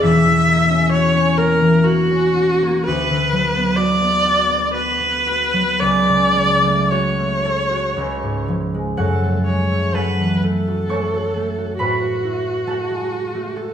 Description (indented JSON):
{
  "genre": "classical, romantic duo for viola and harp",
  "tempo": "54-68 BPM",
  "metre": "3/4",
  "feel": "rubato",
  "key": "F# minor",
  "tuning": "A4 = 440 Hz",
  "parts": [
    { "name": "rich viola", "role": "melody", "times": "0.0-13.7 s", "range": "F#4 to E5", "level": "-18 LUFS", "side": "equal", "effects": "none" },
    { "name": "concert harp", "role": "accompaniment", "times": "0.0-13.7 s", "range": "E1 to C#6", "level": "-18 LUFS", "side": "left 1 dB", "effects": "none" }
  ],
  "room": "wet stone room reverb, RT60 1.3 s",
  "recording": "none",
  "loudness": "-15 LUFS",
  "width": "side -9 dB against mid",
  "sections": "0.0-9.0 A section; 9.0-13.7 B section",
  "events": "none",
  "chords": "0.0 F#7/E; 2.9 Bm/D; 5.8 F#m/C#; 8.0 C#; 9.0 F#m; 11.8 F#m/A",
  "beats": "| 0.04 0.93 1.86 | 2.87 3.78 4.74 | 5.81 6.92 7.96 | 8.98 9.95 10.90 | 11.79 12.68 13.56"
}